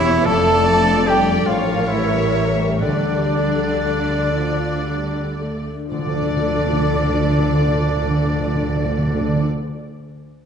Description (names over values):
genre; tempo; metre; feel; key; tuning
classical; 36-50 BPM (dotted quarters); 6/8; rubato; D minor; A4 = 441 Hz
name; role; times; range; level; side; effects
warm symphonic violin section; melody; 0.0-9.4 s; C#5 to D5; -27 LUFS; left 3 dB; none
clear oboe; second line; 0.0-9.4 s; D4 to D5; -29 LUFS; right 2 dB; none
warm symphonic violin section; second line; 0.0-9.4 s; D5 to A5; -30 LUFS; left 1 dB; none
warm symphonic viola section; accompaniment; 0.0-9.4 s; F3 to Bb4; -26 LUFS; equal; none
mellow French horn section; sustained chords; 0.0-9.4 s; D3 to D4; -28 LUFS; left 3 dB; none
concert harp; arpeggios; 0.0-9.8 s; A2 to C#6; -27 LUFS; left 8 dB; none
clear trumpet; stabs; 0.0-9.4 s; D4 to A4; -24 LUFS; right 2 dB; none
dark symphonic double bass section; bass; 0.0-9.4 s; E1 to D2; -24 LUFS; right 2 dB; none
rich symphonic cello section; bass; 0.0-9.4 s; E2 to D3; -25 LUFS; right 2 dB; none
bright large flute ensemble; second line; 0.3-9.4 s; D5 to A5; -27 LUFS; left 2 dB; none
timpani; percussion; 5.9-9.4 s; D3; -23 LUFS; equal; none
room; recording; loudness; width
wet scoring stage reverb, RT60 1.9 s; nothing above 10.6 kHz; -16 LUFS; side -7 dB against mid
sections
0.0-5.9 A section; 5.9-8.9 B section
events
slowing down 0.0-5.9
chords
0.3 Dm/F; 1.5 A7b9; 2.8 Dm